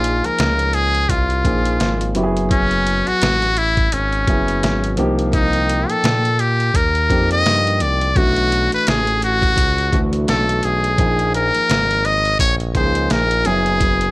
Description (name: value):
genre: hip hop, jazz-hop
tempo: 85 BPM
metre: 4/4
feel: swing 58% on 16ths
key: unclear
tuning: A4 = 439 Hz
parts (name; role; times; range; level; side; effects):
- trumpet with metal mute; melody; 0.0-14.1 s; Db4 to Eb5; -18 LUFS; left 1 dB; none
- dark grand piano; accompaniment; 0.0-14.1 s; E3 to Ab5; -22 LUFS; equal; none
- smooth synth bass; bass; 0.0-14.1 s; Gb1 to Bb2; -21 LUFS; equal; none
- trip hop sampler-style drum kit; drums; 0.0-14.1 s; hi-hat, kick drum, snare drum; -20 LUFS; equal; none
room: light reverb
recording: none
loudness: -14 LUFS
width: side -21 dB against mid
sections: 0.0-14.1 A section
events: none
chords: 0.0 Bbm9; 2.2 Gbm9; 5.0 Cm7; 8.2 Bm7; 11.0 Bbm7; 13.5 Gb7sus2